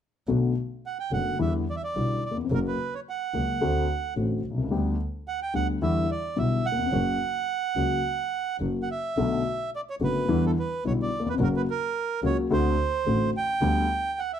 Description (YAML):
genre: tango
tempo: 108 BPM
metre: 4/4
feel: rubato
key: B minor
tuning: A4 = 440 Hz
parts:
  - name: dark grand piano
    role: accompaniment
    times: 0.3-13.8 s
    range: F#1 to G4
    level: -26 LUFS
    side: left 4 dB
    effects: none
  - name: warm double bass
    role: bass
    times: 0.3-13.8 s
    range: F#1 to E2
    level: -30 LUFS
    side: right 2 dB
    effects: none
  - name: bandoneon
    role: melody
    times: 0.9-14.4 s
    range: A4 to G5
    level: -29 LUFS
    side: right 6 dB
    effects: none
room: light reverb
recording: dark, warm production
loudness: -24 LUFS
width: side -9 dB against mid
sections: 0.3-9.2 A section; 9.2-14.4 B section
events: none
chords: 0.3 Bm7; 1.4 Em7; 2.5 F#; 3.6 D7; 4.7 G/D; 5.8 Em7; 6.9 F#; 9.2 Bm7; 10.3 Em7; 11.4 F#; 12.5 D7; 13.6 G/D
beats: | 0.27 0.83 1.39 1.95 | 2.50 3.06 3.61 4.16 | 4.71 5.26 5.82 6.37 | 6.92 7.48 8.04 8.60 | 9.17 9.73 10.29 10.84 | 11.40 11.95 12.50 13.06 | 13.61 14.16